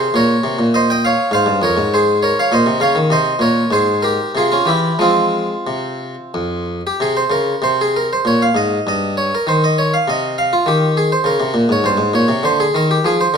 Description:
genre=classical, baroque-style suite movement for harpsichord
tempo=89-104 BPM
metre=3/4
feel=rubato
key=F minor, Ab major from 7.0 s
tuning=A4 = 440 Hz
part: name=harpsichord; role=solo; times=0.0-13.4 s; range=F2 to G5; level=-14 LUFS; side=equal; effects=none
room=moderate recital hall reverb, RT60 1.6 s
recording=minimal, uncompressed stereo recording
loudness=-13 LUFS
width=side -6 dB against mid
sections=0.0-7.0 A section; 7.0-13.4 A section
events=none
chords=0.0 Bbm; 1.3 Fm; 2.5 Dbmaj13/Bb; 3.1 Abmaj9; 4.3 C; 5.0 Fm; 7.0 Ab/C; 8.9 Eb/G; 10.1 N.C.; 10.7 Eb; 12.4 Dm7b5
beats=0.14 0.73 | 1.32 1.91 2.51 | 3.11 3.72 4.35 | 5.00 5.68 6.35 | 7.00 7.63 8.25 | 8.87 9.47 10.08 | 10.67 11.26 11.85 | 12.44 13.04

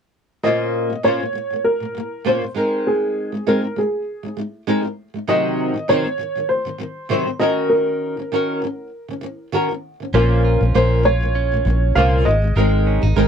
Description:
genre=pop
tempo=99 BPM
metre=4/4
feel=swing 55% on 16ths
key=Bb minor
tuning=A4 = 440 Hz
part: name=dark upright piano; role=melody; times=0.4-13.3 s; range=Ab4 to F5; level=-21 LUFS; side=equal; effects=none
part: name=flamenco guitar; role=accompaniment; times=0.4-13.3 s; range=Bb2 to C5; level=-20 LUFS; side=equal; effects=double-tracked left and right
part: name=direct-recorded clean electric guitar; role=arpeggios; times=10.1-13.3 s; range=Ab3 to C5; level=-27 LUFS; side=right 8 dB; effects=none
part: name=vintage muted fingered electric bass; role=bass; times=10.1-13.3 s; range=Ab1 to C2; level=-17 LUFS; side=equal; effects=none
room=light reverb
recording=dry, close 1970s-style studio recording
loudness=-17 LUFS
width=side -7 dB against mid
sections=0.4-10.1 A section; 10.1-13.3 B section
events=none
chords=0.4 Bbmadd9; 2.6 Abadd9; 5.3 Cdim; 7.4 Ebm7; 10.1 Bbmadd9; 12.3 Abadd9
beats=| 0.43 1.04 1.65 2.25 | 2.86 3.47 4.07 4.68 | 5.29 5.89 6.50 7.11 | 7.71 8.32 8.93 9.53 | 10.14 10.74 11.35 11.95 | 12.56 13.16

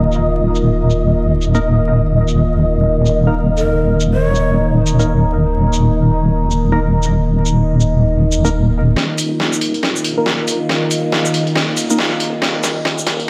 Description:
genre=deep dubstep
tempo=139 BPM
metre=4/4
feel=swing 61% on 16ths, half-time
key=unclear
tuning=A4 = 440 Hz
part: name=overtone-sweeping drone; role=sustained chords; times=0.0-13.3 s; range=Eb3 to F4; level=-21 LUFS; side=equal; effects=chorus, built-in reverb
part: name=deep soft wobble bass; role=bass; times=0.0-13.3 s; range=Eb1 to Bb1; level=-18 LUFS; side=equal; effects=chorus, high-pass filter
part: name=flickering grainy texture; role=texture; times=0.0-9.0 s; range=Eb5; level=-26 LUFS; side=equal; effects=built-in reverb, lush chorus
part: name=trip hop sampler-style drum kit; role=drums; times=0.1-13.3 s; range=hi-hat, shaker, snare drum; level=-21 LUFS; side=equal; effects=high-pass filter on perc, low-pass filter on perc, high-pass filter on snare, low-pass filter on snare, high-pass filter on hats, low-pass filter on hats, high-pass filter on room, low-pass filter on room
part: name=percussive organ stab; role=stabs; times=1.5-12.0 s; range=Bb3 to Bb4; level=-26 LUFS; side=equal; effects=chorus, phaser, dub echo
part: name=breathy mellow shakuhachi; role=melody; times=3.6-4.7 s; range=Bb4 to Db5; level=-26 LUFS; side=equal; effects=dub echo
room=moderate plate reverb, RT60 2.0 s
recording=dreamy mix soaked in reverb, vinyl crackle, high-pass filter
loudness=-15 LUFS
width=mono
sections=0.0-9.0 A section; 9.0-13.3 B section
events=build-up 9.0-13.3; drum fill 9.0-13.3; filter sweep on synth stab 9.0-13.3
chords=0.0 Eb5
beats=| 0.33 0.77 1.20 1.63 | 2.06 2.49 2.92 3.35 | 3.79 4.22 4.65 5.08 | 5.51 5.95 6.38 6.81 | 7.24 7.67 8.10 8.54 | 8.97 9.40 9.83 10.26 | 10.69 11.12 11.56 11.99 | 12.42 12.85 13.28

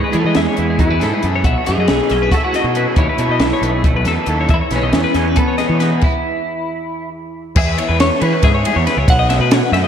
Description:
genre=math rock and midwest emo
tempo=275 BPM (eighths)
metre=7/8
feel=straight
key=E major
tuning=A4 = 437 Hz
part: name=twelve-string electric guitar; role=melody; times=0.0-9.7 s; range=G#3 to F#5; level=-20 LUFS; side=left 1 dB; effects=lush chorus, tape echo
part: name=twangy electric guitar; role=accompaniment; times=0.0-7.6 s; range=E2 to E4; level=-26 LUFS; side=right 5 dB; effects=ensemble chorus
part: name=twelve-string electric guitar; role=arpeggios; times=0.0-9.9 s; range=F#4 to E5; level=-21 LUFS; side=left 5 dB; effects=tremolo, tape echo
part: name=overdriven electric guitar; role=riff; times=0.1-9.9 s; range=B2 to A4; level=-25 LUFS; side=right 1 dB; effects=none
part: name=fuzz picked electric bass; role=bass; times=0.1-9.8 s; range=B1 to E3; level=-18 LUFS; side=equal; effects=overdrive
part: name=compact cocktail drum kit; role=drums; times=0.1-9.8 s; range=crash cymbal, hi-hat, kick drum, ride cymbal, snare drum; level=-17 LUFS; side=equal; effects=none
room=moderate lush hall reverb, RT60 1.9 s, studio ambience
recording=dreamy mix soaked in reverb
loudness=-13 LUFS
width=side -8 dB against mid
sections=0.0-7.6 A section; 7.6-9.9 B section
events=stop 6.0-7.6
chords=0.0 B7sus4; 4.5 Emaj7; 7.6 E6; 9.1 B7sus4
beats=0.14 0.36 0.58 0.79 1.01 1.23 | 1.45 1.67 1.89 2.10 2.32 2.54 2.76 | 2.98 3.20 3.42 3.63 3.85 4.07 4.29 | 4.51 4.72 4.94 5.16 5.38 5.60 5.82 | 6.03 6.25 6.47 6.69 6.91 7.12 7.34 | 7.56 7.78 7.99 8.21 8.43 8.64 8.86 | 9.08 9.29 9.51 9.73

